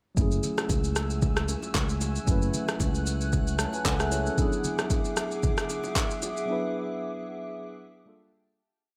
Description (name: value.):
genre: amapiano.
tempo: 114 BPM.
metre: 4/4.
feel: swing 55% on 16ths.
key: F# minor.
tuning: A4 = 440 Hz.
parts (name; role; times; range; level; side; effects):
mellow tine electric piano; accompaniment; 0.1-8.6 s; F#3 to A5; -34 LUFS; equal; none.
glassy FM pad; sustained chords; 0.2-8.6 s; A3 to F#6; -38 LUFS; equal; ensemble chorus, built-in reverb.
fingered electric bass; bass; 0.2-4.3 s; F#1 to C#2; -32 LUFS; equal; none.
deep house drum kit; drums; 0.2-6.5 s; handclaps, kick drum, rim click, shaker; -30 LUFS; equal; none.
congas and bongos; percussion; 0.2-6.4 s; none; -40 LUFS; equal; none.
room: light reverb.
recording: none.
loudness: -28 LUFS.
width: mono.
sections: 0.2-8.6 groove.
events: break 6.5-8.6; fade-out 6.5-8.6.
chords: 0.2 F#m9; 4.4 E9; 8.1 Gm9.